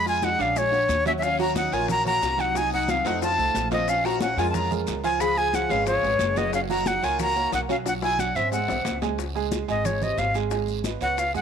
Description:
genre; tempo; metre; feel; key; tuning
Afro-Cuban jazz; 181 BPM; 4/4; straight; unclear; A4 = 440 Hz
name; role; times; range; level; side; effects
breathy bright jazz flute; melody; 0.0-11.4 s; C#5 to B5; -24 LUFS; equal; none
sitar; second line; 0.0-9.0 s; G#3 to G#4; -31 LUFS; left 12 dB; none
warm upright piano; accompaniment; 0.0-11.4 s; C3 to G#5; -30 LUFS; right 13 dB; none
upright bass; bass; 0.0-11.4 s; F#1 to E#2; -31 LUFS; equal; none
congas; percussion; 0.1-11.4 s; none; -34 LUFS; left 1 dB; none
maracas; percussion; 0.1-11.4 s; none; -41 LUFS; left 15 dB; none
bongos; percussion; 0.2-11.4 s; none; -36 LUFS; left 14 dB; none
guiro; percussion; 0.2-11.4 s; none; -40 LUFS; right 14 dB; none
room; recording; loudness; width
light reverb; 1960s-style stereo with parts hard left and right; -22 LUFS; side -7 dB against mid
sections
0.0-9.2 A section; 9.2-11.4 B section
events
drum fill 2.9-3.9, 7.9-9.2; flute solo 9.2-11.4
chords
0.0 A#7b13; 0.6 A#7alt; 1.2 D#m7; 2.5 G#13b9/B#; 3.2 F; 3.9 A#m7; 5.2 C#7; 6.5 F#; 7.9 B5; 8.5 G#7alt; 9.2 Db5; 10.5 Abm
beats
0.22 0.56 0.89 | 1.22 1.55 1.89 2.22 | 2.55 2.88 3.21 3.54 | 3.88 4.21 4.54 4.87 | 5.20 5.54 5.87 6.20 | 6.53 6.86 7.19 7.52 | 7.86 8.19 8.52 8.85 | 9.18 9.51 9.85 10.18 | 10.51 10.84 11.17

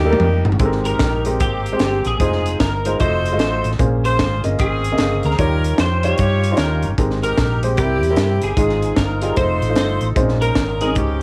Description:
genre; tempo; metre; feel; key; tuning
uptempo gospel; 151 BPM; 4/4; swing 63% on 8ths; Ab major; A4 = 440 Hz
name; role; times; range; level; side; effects
bright saxophone section; melody; 0.0-11.2 s; Bb3 to Db5; -26 LUFS; equal; cassette tape
warm upright piano; accompaniment; 0.0-11.2 s; Ab2 to Eb5; -24 LUFS; equal; cassette tape
hollow-body short-scale fingered electric bass; bass; 0.0-11.2 s; F1 to G2; -23 LUFS; equal; none
crisp fusion drum kit; drums; 0.1-11.1 s; hi-hat, kick drum, snare drum, toms; -24 LUFS; equal; cassette tape
clean electric guitar; melody; 0.9-11.2 s; G4 to Db5; -28 LUFS; equal; ensemble chorus, cassette tape
room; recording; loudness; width
light reverb; home recording on cassette; -18 LUFS; mono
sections
0.6-11.2 A section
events
drum fill 0.0-0.6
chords
0.0 Eb; 0.6 Abmaj9; 2.2 Fm7; 3.0 F7b9; 3.8 Bbm9; 5.4 Eb9; 7.0 Abmaj9; 7.8 C7; 8.6 Fm9/Ab; 9.4 F7; 10.2 Bbm11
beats
0.20 | 0.60 1.00 1.40 1.80 | 2.20 2.60 3.00 3.40 | 3.80 4.20 4.59 4.99 | 5.39 5.79 6.18 6.58 | 6.98 7.38 7.77 8.17 | 8.57 8.97 9.36 9.76 | 10.16 10.56 10.95

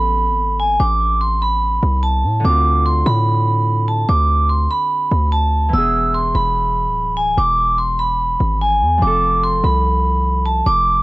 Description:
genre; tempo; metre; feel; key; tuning
hip hop, trap; 146 BPM; 4/4; half-time; A harmonic minor; A4 = 440 Hz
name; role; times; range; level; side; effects
vibraphone with hard mallets; melody; 0.0-11.0 s; G#5 to E6; -16 LUFS; right 1 dB; low-pass filter, cassette tape
Celtic harp; accompaniment; 0.0-11.0 s; D3 to A4; -26 LUFS; left 1 dB; low-pass filter, cassette tape
hard-hitting 808-style bass; bass; 0.0-11.0 s; D1 to A2; -18 LUFS; equal; none
room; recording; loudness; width
light reverb; home recording on cassette; -14 LUFS; side -20 dB against mid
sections
0.0-11.0 A section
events
none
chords
0.0 Amadd9; 2.4 Dm7; 5.7 E; 9.0 F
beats
0.39 | 0.80 1.21 1.62 2.03 | 2.44 2.85 3.27 3.68 | 4.09 4.50 4.91 5.32 | 5.73 6.14 6.55 6.96 | 7.38 7.79 8.20 8.61 | 9.02 9.43 9.84 10.25 | 10.66

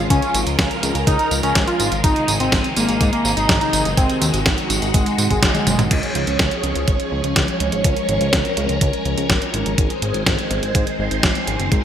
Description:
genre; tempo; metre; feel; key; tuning
italo disco; 124 BPM; 4/4; straight; Db major; A4 = 440 Hz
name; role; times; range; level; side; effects
phased string machine; sustained chords; 0.0-11.8 s; C3 to Db5; -22 LUFS; equal; ensemble chorus, phaser, vintage 12-bit sampler grit
fat analog bass; bass; 0.0-11.8 s; Gb1 to Ab2; -23 LUFS; equal; none
wide unison lead; melody; 0.1-5.8 s; Ab3 to F4; -21 LUFS; equal; cassette tape, digital delay
clean 12-bit digital drum machine; drums; 0.1-11.8 s; crash cymbal, hi-hat, snare drum, tambourine, toms; -21 LUFS; right 1 dB; gated reverb
electronic kick drum; drums; 0.1-11.8 s; none; -20 LUFS; equal; none
room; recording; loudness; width
moderate plate reverb, RT60 2.2 s; bright 1980s-style digital production; -16 LUFS; side -9 dB against mid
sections
0.0-5.9 A section; 5.9-11.8 B section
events
drum fill 5.4-5.9; band accent 5.4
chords
0.0 Db; 2.0 Ab; 5.9 Db; 9.8 Ab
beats
| 0.10 0.59 1.07 1.55 | 2.04 2.52 3.01 3.49 | 3.97 4.46 4.94 5.42 | 5.91 6.39 6.88 7.36 | 7.84 8.33 8.81 9.30 | 9.78 10.26 10.75 11.23 | 11.72

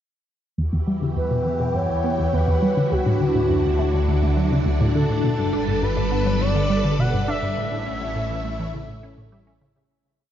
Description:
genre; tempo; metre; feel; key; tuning
ambient, sequencer-driven space music; 103 BPM; 4/4; straight; E dorian; A4 = 441 Hz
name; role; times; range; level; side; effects
phased string machine; sustained chords; 0.6-9.9 s; D3 to B4; -26 LUFS; equal; ensemble chorus, phaser
resonant blip pluck; riff; 0.6-9.9 s; D2 to D4; -23 LUFS; equal; phaser, analog delay
analog drone; bass; 0.6-9.9 s; G1 to E2; -27 LUFS; equal; chorus
expressive portamento lead; melody; 1.2-9.6 s; F#4 to F#5; -25 LUFS; left 1 dB; chorus, analog delay
room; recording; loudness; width
wet huge ambient reverb, RT60 6.9 s; dark, warm production, nothing above 7.5 kHz; -19 LUFS; side -10 dB against mid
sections
0.6-9.9 A section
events
filter sweep on synth arpeggio sound 0.6-9.9; fade-out 6.8-9.9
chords
0.6 Emadd9; 2.9 Dadd9; 5.2 Gadd9; 7.6 A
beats
| 0.58 1.17 1.75 2.33 | 2.91 3.50 4.08 4.66 | 5.24 5.83 6.41 6.99 | 7.57 8.16 8.74 9.32

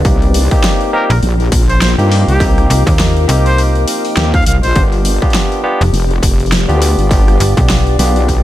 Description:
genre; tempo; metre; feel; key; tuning
glitch hop; 102 BPM; 4/4; swing 58% on 16ths; C minor; A4 = 440 Hz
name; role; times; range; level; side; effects
wobble bass; bass; 0.0-8.4 s; F1 to G2; -12 LUFS; equal; chorus, tube saturation
dubstep drum kit; drums; 0.0-8.4 s; hi-hat, rim click, snare drum; -19 LUFS; equal; none
electronic kick drum; drums; 0.0-8.4 s; none; -14 LUFS; equal; distortion
granular cloud pad; texture; 0.0-8.4 s; F4 to G5; -22 LUFS; left 2 dB; built-in reverb, sidechain pumping
barky tine electric piano; stabs; 0.1-8.4 s; Bb3 to G4; -18 LUFS; left 1 dB; sidechain pumping, ping-pong delay
warm trumpet; melody; 0.9-4.8 s; G4 to F5; -20 LUFS; equal; ping-pong delay
slap-like FM bass; bass; 1.1-8.0 s; F1 to Eb2; -12 LUFS; equal; none
swell; sound effects; 8.4 s; none; -32 LUFS; right 1 dB; none
room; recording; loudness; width
little or no reverb; none; -9 LUFS; side -14 dB against mid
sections
0.0-8.4 A section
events
none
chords
0.1 Cm7; 4.8 G7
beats
| 0.05 0.64 1.23 1.82 | 2.40 2.99 3.58 4.17 | 4.76 5.34 5.93 6.52 | 7.11 7.70 8.29

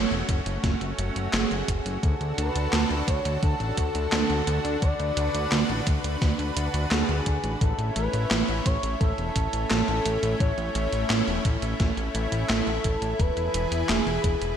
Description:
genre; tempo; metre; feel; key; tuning
synthwave; 86 BPM; 4/4; straight; unclear; A4 = 441 Hz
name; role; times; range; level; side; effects
expressive synth lead; melody; 0.0-14.6 s; G#4 to D5; -31 LUFS; equal; wide subtle chorus, cassette tape, ping-pong delay, shimmer reverb
lush unison pad; sustained chords; 0.0-14.6 s; D3 to B4; -31 LUFS; left 1 dB; chorus, sidechain pumping, shimmer reverb
fat analog bass; bass; 0.0-14.5 s; E1 to D2; -28 LUFS; equal; none
gated 80s digital drum machine; drums; 0.1-14.6 s; handclaps, hi-hat, snare drum; -28 LUFS; right 3 dB; gated reverb, gated reverb snare
electronic kick drum; drums; 0.3-14.4 s; none; -25 LUFS; left 1 dB; none
room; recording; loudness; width
moderate lush hall reverb, RT60 2.9 s; bright 1980s-style digital production; -23 LUFS; side -8 dB against mid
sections
0.0-14.6 A section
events
none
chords
0.0 F#m; 2.0 D; 7.6 A; 13.2 E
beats
0.64 1.33 | 2.03 2.73 3.43 4.12 | 4.82 5.52 6.22 6.92 | 7.61 8.31 9.01 9.71 | 10.40 11.10 11.80 12.50 | 13.19 13.89

